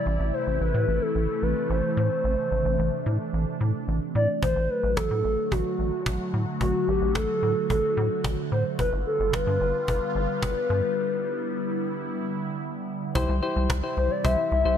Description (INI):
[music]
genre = synth-pop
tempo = 110 BPM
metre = 4/4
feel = straight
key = A dorian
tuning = A4 = 435 Hz
[part]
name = hollow clarinet-like synth lead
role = melody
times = 0.0-14.8 s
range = F#4 to E5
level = -26 LUFS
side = left 1 dB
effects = chorus, ping-pong delay
[part]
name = phased analog pad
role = sustained chords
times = 0.0-14.8 s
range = C3 to F#4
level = -30 LUFS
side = right 1 dB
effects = phaser, chorus
[part]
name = rubbery square bass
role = bass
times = 0.1-14.8 s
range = G1 to A2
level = -26 LUFS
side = equal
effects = none
[part]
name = cajon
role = drums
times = 4.4-14.7 s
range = none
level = -31 LUFS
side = equal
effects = none
[part]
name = soft electric-piano-like synth keys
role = accompaniment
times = 13.2-14.8 s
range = E4 to C5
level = -29 LUFS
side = left 3 dB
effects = chorus
[sound]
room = light reverb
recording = none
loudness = -23 LUFS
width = side -8 dB against mid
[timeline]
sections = 0.0-13.2 A section; 13.2-14.8 B section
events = break 11.0-13.2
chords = 0.1 Am; 4.4 D/A; 8.8 G7; 13.2 C